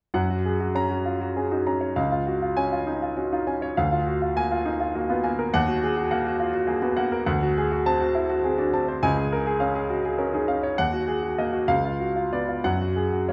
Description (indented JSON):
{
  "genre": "classical, virtuoso piano study",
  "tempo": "62-70 BPM (dotted quarters)",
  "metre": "6/8",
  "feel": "rubato",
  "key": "F# major",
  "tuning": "A4 = 440 Hz",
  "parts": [
    { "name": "clear grand piano", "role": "solo", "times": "0.1-13.3 s", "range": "C#2 to A#5", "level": "-25 LUFS", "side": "equal", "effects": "none" }
  ],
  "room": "moderate recital hall reverb, RT60 1.4 s",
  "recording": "recorded in a church or concert hall",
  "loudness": "-25 LUFS",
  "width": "mono",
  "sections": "0.1-13.3 A section",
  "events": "none",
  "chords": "0.1 F#; 2.0 C#; 3.8 A#7/D; 5.5 D#m; 7.3 D7; 9.0 C#; 10.8 D#m; 11.7 C#7b9; 12.6 N.C."
}